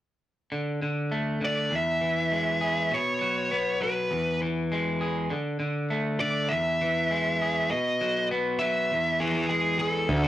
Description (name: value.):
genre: rock.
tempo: 100 BPM.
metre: 4/4.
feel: straight.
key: E major.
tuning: A4 = 440 Hz.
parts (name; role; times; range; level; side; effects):
electric guitar at the edge of break-up; arpeggios; 0.5-10.3 s; E2 to G#4; -28 LUFS; left 1 dB; none.
fuzz lead guitar; melody; 1.4-10.3 s; G#4 to E5; -26 LUFS; equal; distortion.
fuzz picked electric bass; bass; 10.1-10.3 s; D2; -22 LUFS; right 1 dB; overdrive.
room: moderate studio reverb, RT60 0.6 s.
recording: rough rehearsal-room recording, tube saturation.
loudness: -24 LUFS.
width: side -13 dB against mid.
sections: 0.5-10.1 A section.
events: none.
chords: 0.5 D5; 1.7 E; 2.9 B5; 4.1 E; 5.3 D5; 6.5 E; 7.7 B; 8.9 E.